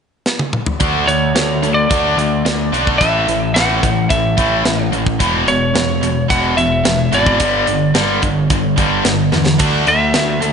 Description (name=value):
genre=hard rock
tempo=109 BPM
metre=4/4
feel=straight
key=unclear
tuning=A4 = 444 Hz
part: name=tight metal drum kit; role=drums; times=0.3-10.5 s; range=crash cymbal, hi-hat, kick drum, snare drum, toms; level=-19 LUFS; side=equal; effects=none
part: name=tight distorted guitar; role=riff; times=0.8-10.5 s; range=E2 to D4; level=-19 LUFS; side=left 9 dB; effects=distortion
part: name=tight distorted guitar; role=riff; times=0.8-10.5 s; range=E2 to D4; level=-19 LUFS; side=right 8 dB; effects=distortion
part: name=growling picked electric bass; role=bass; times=0.8-10.5 s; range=E1 to E2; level=-21 LUFS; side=equal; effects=overdrive
part: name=lightly driven lead guitar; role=melody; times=1.1-10.5 s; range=C#5 to F#5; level=-18 LUFS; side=equal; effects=digital delay
room=moderate recital hall reverb, RT60 1.4 s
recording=nothing above 10.7 kHz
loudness=-12 LUFS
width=side -6 dB against mid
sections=0.8-10.5 A section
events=drum fill 0.3-0.8, 9.3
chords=0.0 N.C.; 0.8 D5; 3.0 A5; 5.2 E5; 7.4 G5; 9.6 D5